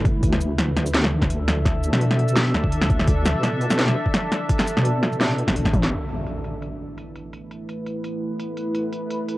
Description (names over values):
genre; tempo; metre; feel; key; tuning
half-time drum and bass; 169 BPM; 4/4; swing 54% on 16ths, half-time; unclear; A4 = 440 Hz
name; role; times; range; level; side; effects
deep dark ambient pad; sustained chords; 0.0-9.4 s; A3 to E5; -27 LUFS; equal; chorus, built-in reverb, sidechain pumping, cassette tape
deep soft wobble bass; bass; 0.0-5.9 s; G1 to B2; -22 LUFS; equal; chorus
drum and bass drum kit; drums; 0.1-9.4 s; hi-hat, shaker, snare drum, toms; -22 LUFS; equal; low-pass filter on hats, cassette tape, low-pass filter on snare, low-pass filter on perc, low-pass filter on toms, low-pass filter on room
electronic kick drum; drums; 0.1-5.8 s; none; -22 LUFS; equal; overdrive, cassette tape
impact; sound effects; 5.9-7.3 s; none; -32 LUFS; right 1 dB; none
room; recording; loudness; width
light reverb; home recording on cassette; -19 LUFS; side -17 dB against mid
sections
0.0-5.9 A section; 5.9-9.4 B section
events
drop 0.0-5.9; drum fill 5.7; impact 5.9-7.3; filter sweep on drum 5.9-9.4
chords
0.2 D5; 5.9 A5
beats
| 0.23 0.59 0.94 1.30 | 1.65 2.01 2.36 2.72 | 3.07 3.43 3.78 4.14 | 4.49 4.85 5.20 5.56 | 5.91 6.27 6.62 6.98 | 7.33 7.69 8.04 8.40 | 8.75 9.11